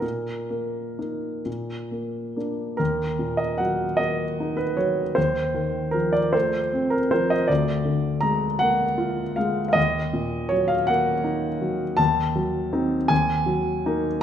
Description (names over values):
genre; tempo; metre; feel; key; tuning
classical, romantic character piece for solo piano; 40-56 BPM (dotted quarters); 6/8; rubato; Eb minor; A4 = 440 Hz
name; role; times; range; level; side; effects
warm grand piano; solo; 0.0-14.2 s; D2 to Bb5; -21 LUFS; equal; none
room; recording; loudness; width
moderate recital hall reverb, RT60 1.5 s; none; -21 LUFS; side -9 dB against mid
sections
0.0-2.8 A section; 2.8-14.2 B section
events
none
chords
0.0 Eb5/Bb; 1.5 Bb; 2.8 Ebm; 5.2 F7/Eb; 7.5 Bb7/D; 9.8 Ebm; 12.0 Ebdim7; 13.1 Ebm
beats
| 0.02 1.46 | 2.80 4.00 | 5.17 6.34 | 7.50 8.61 | 9.76 10.89 | 11.99 13.10 | 14.22